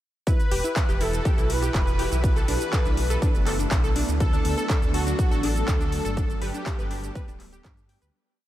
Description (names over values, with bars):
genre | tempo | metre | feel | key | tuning
progressive house | 122 BPM | 4/4 | straight | E minor | A4 = 439 Hz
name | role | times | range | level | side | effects
wide unison lead | melody | 0.3-7.3 s | F#4 to B4 | -32 LUFS | equal | lush chorus, sidechain pumping, tape echo
soft supersaw | second line | 0.3-7.3 s | F#4 to B4 | -37 LUFS | left 1 dB | none
shimmering ambient pad | sustained chords | 1.1-8.1 s | E3 to B4 | -32 LUFS | right 1 dB | chorus, built-in reverb, sidechain pumping
wide unison pluck | arpeggios | 0.3-8.1 s | D4 to G5 | -33 LUFS | equal | cassette tape, sidechain pumping, tape echo
deep house drum kit | drums | 0.3-8.1 s | handclaps, hi-hat, shaker | -33 LUFS | equal | overdrive, studio reverb
electronic kick drum | drums | 0.3-7.7 s | none | -23 LUFS | equal | studio reverb
dark detuned saw bass | bass | 0.5-8.1 s | D1 to G2 | -27 LUFS | equal | sidechain pumping
room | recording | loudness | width
light reverb | none | -21 LUFS | side -13 dB against mid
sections
0.3-8.1 drop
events
drop 0.3-8.1; fade-out 5.5-8.1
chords
0.3 Emadd9; 2.2 Bm7; 4.2 D; 6.2 G